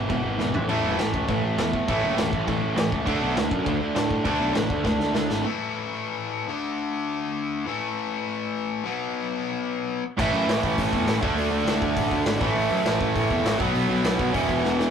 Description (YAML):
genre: punk rock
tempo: 202 BPM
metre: 4/4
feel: straight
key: unclear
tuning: A4 = 439 Hz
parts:
  - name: distorted electric guitar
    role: riff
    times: 0.0-5.4, 10.2-14.9 s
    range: E2 to D4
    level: -28 LUFS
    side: equal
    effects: overdrive
  - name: fuzz picked electric bass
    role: bass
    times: 0.0-5.4, 10.2-14.9 s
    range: E1 to A2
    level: -28 LUFS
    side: equal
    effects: overdrive
  - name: distorted electric guitar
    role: riff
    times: 0.1-14.9 s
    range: E2 to D4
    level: -28 LUFS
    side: left 6 dB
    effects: distortion
  - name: distorted electric guitar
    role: riff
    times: 0.1-5.3, 10.2-14.9 s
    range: E2 to D4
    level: -27 LUFS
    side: right 5 dB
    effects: overdrive
  - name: raw garage drum kit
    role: drums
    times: 0.1-5.4, 10.2-14.9 s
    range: crash cymbal, hi-hat, kick drum, snare drum, toms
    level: -28 LUFS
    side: left 1 dB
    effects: none
room: light reverb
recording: rough rehearsal-room recording, warm saturation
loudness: -22 LUFS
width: side -7 dB against mid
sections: 0.0-5.4 A section; 5.4-14.9 B section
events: drum fill 0.4, 4.8-5.4, 14.6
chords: 0.0 E; 0.5 A5; 3.1 D5; 5.4 A5; 6.5 D5; 7.7 A5; 8.9 B5; 10.2 A5; 11.2 D5; 12.4 A5; 13.6 B5; 14.3 E5